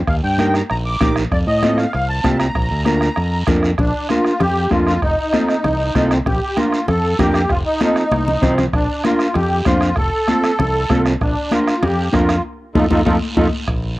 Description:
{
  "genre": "latin, cumbia",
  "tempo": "194 BPM",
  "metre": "4/4",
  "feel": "straight",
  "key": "Bb major",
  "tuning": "A4 = 440 Hz",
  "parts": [
    { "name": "musette accordion", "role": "melody", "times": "0.1-13.5 s", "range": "C4 to D6", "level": "-20 LUFS", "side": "equal", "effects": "cassette tape, plate reverb" },
    { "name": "modern bright fingered electric bass", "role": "bass", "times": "0.1-14.0 s", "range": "F1 to A2", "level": "-20 LUFS", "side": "equal", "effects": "none" },
    { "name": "bombo", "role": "percussion", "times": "0.1-13.8 s", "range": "none", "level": "-22 LUFS", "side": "right 1 dB", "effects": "none" },
    { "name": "congas", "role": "percussion", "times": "0.1-13.8 s", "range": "none", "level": "-22 LUFS", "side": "left 3 dB", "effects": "none" },
    { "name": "guiro", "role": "percussion", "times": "0.1-14.0 s", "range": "none", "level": "-32 LUFS", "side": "right 3 dB", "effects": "none" },
    { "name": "mellow electric guitar", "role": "accompaniment", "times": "0.4-13.5 s", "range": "C4 to C5", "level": "-20 LUFS", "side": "right 2 dB", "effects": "plate reverb" }
  ],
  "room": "light reverb",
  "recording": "home recording on cassette",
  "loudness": "-14 LUFS",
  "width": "side -18 dB against mid",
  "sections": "0.0-3.8 A section; 3.8-13.7 B section",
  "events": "drum fill 8.1-8.7; band accent 12.4-13.7",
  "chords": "0.1 Eb; 1.3 F7; 2.6 Bb; 5.0 F7; 6.3 Bb; 7.5 F7; 8.7 Bb; 10.0 F; 11.2 Bb; 12.4 F7"
}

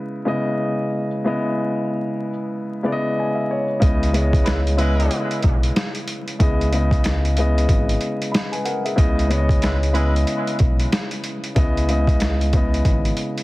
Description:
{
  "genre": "hip hop, boom-bap hip-hop",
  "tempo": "93 BPM",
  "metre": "4/4",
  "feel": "swing 61% on 16ths",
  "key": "C# minor",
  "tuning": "A4 = 440 Hz",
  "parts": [
    { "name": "dark baby grand piano", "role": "accompaniment", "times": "0.0-13.4 s", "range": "C#3 to B5", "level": "-22 LUFS", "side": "left 1 dB", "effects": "cassette tape, high-pass filter, low-pass filter" },
    { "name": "deep dub fingered electric bass", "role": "bass", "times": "3.8-13.1 s", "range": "G#1 to C#2", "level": "-20 LUFS", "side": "equal", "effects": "none" },
    { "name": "boom bap sampler-style drum kit", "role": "drums", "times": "3.8-13.4 s", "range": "hi-hat, kick drum, snare drum", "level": "-20 LUFS", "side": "equal", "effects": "none" },
    { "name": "clear horn section", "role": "stabs", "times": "4.4-5.2, 9.6-10.2 s", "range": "G#3 to B4", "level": "-29 LUFS", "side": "right 1 dB", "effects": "high-pass filter, low-pass filter, analog delay" }
  ],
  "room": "little or no reverb",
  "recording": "heavily compressed radio sound, multiband compression, vinyl crackle",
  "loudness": "-18 LUFS",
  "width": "side -19 dB against mid",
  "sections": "0.0-3.8 A section; 3.8-13.4 B section",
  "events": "none",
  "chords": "0.0 C#m7"
}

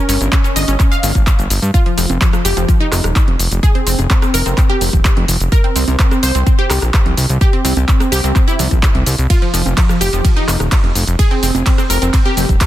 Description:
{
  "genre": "progressive house",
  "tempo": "127 BPM",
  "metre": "4/4",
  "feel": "straight",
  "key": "unclear",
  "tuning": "A4 = 440 Hz",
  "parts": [
    { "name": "wide unison pluck", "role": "arpeggios", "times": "0.0-12.7 s", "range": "F3 to F5", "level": "-19 LUFS", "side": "equal", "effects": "sidechain pumping, ping-pong delay" },
    { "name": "fat analog bass", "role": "bass", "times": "0.1-12.6 s", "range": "Eb1 to G2", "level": "-16 LUFS", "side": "equal", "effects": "sidechain pumping" },
    { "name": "deep house drum kit", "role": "drums", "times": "0.1-12.7 s", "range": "cabasa, handclaps, hi-hat, ride cymbal", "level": "-20 LUFS", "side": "equal", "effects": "overdrive, sidechain pumping on hats, sidechain pumping on perc, sidechain pumping on cymbals" },
    { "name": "electronic kick drum", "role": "drums", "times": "0.3-12.7 s", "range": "none", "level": "-12 LUFS", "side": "equal", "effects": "none" },
    { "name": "electronic congas and rim click", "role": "percussion", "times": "2.1-12.6 s", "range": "none", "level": "-25 LUFS", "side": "right 4 dB", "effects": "overdrive, sidechain pumping on perc, sidechain pumping on snare" }
  ],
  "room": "little or no reverb",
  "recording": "dense, heavily limited modern master",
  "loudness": "-11 LUFS",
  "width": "side -14 dB against mid",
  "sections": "0.0-12.7 A section",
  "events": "none",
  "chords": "0.0 Eb9 (rootless); 1.7 F5; 5.5 C; 9.3 F5"
}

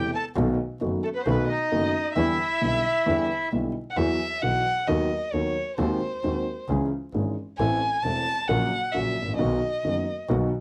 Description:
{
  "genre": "tango",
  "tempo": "133 BPM",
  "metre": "4/4",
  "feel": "rubato",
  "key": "E minor, E major from 4.0 s",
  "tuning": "A4 = 440 Hz",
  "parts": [
    { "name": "bandoneon", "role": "melody", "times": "0.0-3.5 s", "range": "A3 to A5", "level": "-28 LUFS", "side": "equal", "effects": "cassette tape" },
    { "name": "warm violin", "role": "second line", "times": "0.0-10.2 s", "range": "A4 to A5", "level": "-31 LUFS", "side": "equal", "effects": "cassette tape" },
    { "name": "dark upright piano", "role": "accompaniment", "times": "0.0-10.5 s", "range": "E1 to A4", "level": "-29 LUFS", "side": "equal", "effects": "cassette tape" },
    { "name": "clear double bass", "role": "bass", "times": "0.0-10.5 s", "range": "E1 to E2", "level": "-33 LUFS", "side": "equal", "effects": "none" }
  ],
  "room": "moderate studio reverb, RT60 0.6 s",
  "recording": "home recording on cassette, vinyl crackle",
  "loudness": "-26 LUFS",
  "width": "mono",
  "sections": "0.0-4.0 A section; 4.0-10.6 B section",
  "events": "violin solo 4.0-10.6",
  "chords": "0.4 B7; 2.2 Em7; 4.0 Esus2; 4.9 B/D#; 5.8 G#7/D#; 6.7 C#m; 7.6 Am; 8.5 F#/A#; 9.4 B"
}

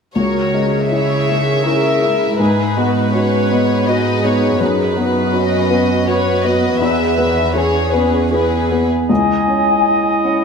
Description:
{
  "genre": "cinematic, emotional film score for orchestra",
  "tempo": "81 BPM",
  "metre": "3/4",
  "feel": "rubato",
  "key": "unclear",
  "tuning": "A4 = 440 Hz",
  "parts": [
    { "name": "warm symphonic violin section", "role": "second line", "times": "0.2-8.9 s", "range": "F#4 to E5", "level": "-18 LUFS", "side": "left 4 dB", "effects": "none" },
    { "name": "dark symphonic viola section", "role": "accompaniment", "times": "0.2-8.9 s", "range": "D#3 to B4", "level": "-22 LUFS", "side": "right 3 dB", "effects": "none" },
    { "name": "felt-muted upright piano", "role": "accompaniment", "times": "0.2-10.4 s", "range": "C#2 to E5", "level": "-18 LUFS", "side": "left 2 dB", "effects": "none" },
    { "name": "warm symphonic cello section", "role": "bass", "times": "0.2-8.9 s", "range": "E2 to C#3", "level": "-21 LUFS", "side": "right 4 dB", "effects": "none" },
    { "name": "clear oboe", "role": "second line", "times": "9.1-10.4 s", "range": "D#5", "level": "-20 LUFS", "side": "right 3 dB", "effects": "none" },
    { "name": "large flute ensemble", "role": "second line", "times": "9.1-10.4 s", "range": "F#5 to G#5", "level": "-16 LUFS", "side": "left 3 dB", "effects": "none" },
    { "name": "warm clarinet", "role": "second line", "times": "9.1-10.4 s", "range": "E4", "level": "-21 LUFS", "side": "right 3 dB", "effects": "none" }
  ],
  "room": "moderate scoring stage reverb, RT60 2.1 s",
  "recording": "none",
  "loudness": "-13 LUFS",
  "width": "side -5 dB against mid",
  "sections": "0.2-9.1 A section; 9.1-10.4 B section",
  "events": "none",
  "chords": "0.2 C#madd9; 2.4 G#m7; 4.6 F#sus4; 6.8 E; 9.1 C#madd9"
}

